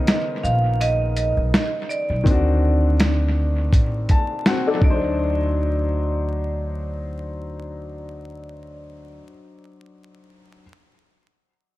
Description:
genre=lo-fi hip hop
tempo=82 BPM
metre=4/4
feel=swing 55% on 16ths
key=unclear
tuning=A4 = 442 Hz
part: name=vibraphone with hard mallets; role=melody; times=0.0-9.2 s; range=D5 to F5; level=-28 LUFS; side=right 3 dB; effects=low-pass filter, dub echo
part: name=clear upright piano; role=accompaniment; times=0.0-10.6 s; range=C#3 to A5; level=-26 LUFS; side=left 3 dB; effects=low-pass filter, dub echo
part: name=lo-fi sampler-style drum kit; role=drums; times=0.1-5.0 s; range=hi-hat, kick drum, shaker, snare drum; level=-19 LUFS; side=equal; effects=none
part: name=upright bass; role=bass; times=0.4-9.2 s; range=A1 to D2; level=-22 LUFS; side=equal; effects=none
room=small room ambience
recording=echo-heavy mix, vinyl crackle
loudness=-18 LUFS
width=side -16 dB against mid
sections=0.0-5.2 A section; 5.2-8.1 B section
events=none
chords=0.0 Bmaj9; 2.3 D7b9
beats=0.06 0.80 1.53 | 2.26 2.99 3.72 4.46 | 5.19 5.92 6.65 7.38

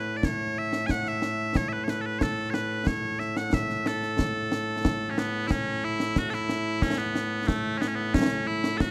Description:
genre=scottish traditional, Scottish pipe music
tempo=91 BPM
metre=2/4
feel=straight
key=A major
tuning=A4 = 438 Hz
part: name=loud bright bagpipes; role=melody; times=0.0-8.9 s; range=A2 to G#5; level=-30 LUFS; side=equal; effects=none
part: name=concert snare drum and concert bass drum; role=drums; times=0.2-8.9 s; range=none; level=-31 LUFS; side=equal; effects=none
room=light reverb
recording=close, detailed microphones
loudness=-28 LUFS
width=mono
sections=0.0-5.5 A section; 5.5-8.9 A section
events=none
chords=none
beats=| 0.23 0.89 | 1.55 2.21 | 2.87 3.53 | 4.19 4.85 | 5.51 6.17 | 6.83 7.49 | 8.15 8.81

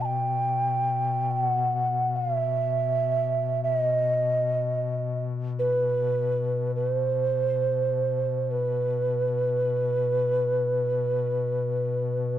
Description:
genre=caucasian folk, Caucasian lament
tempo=free time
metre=none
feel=none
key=unclear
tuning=A4 = 440 Hz
part: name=mellow hollow bansuri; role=melody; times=0.0-12.4 s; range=B4 to A5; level=-24 LUFS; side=right 2 dB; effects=none
part: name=mellow duduk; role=drone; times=0.0-12.4 s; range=B2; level=-29 LUFS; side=left 5 dB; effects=none
room=light reverb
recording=close, detailed microphones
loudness=-23 LUFS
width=side -11 dB against mid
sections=0.0-12.4 A section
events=none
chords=none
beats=free time

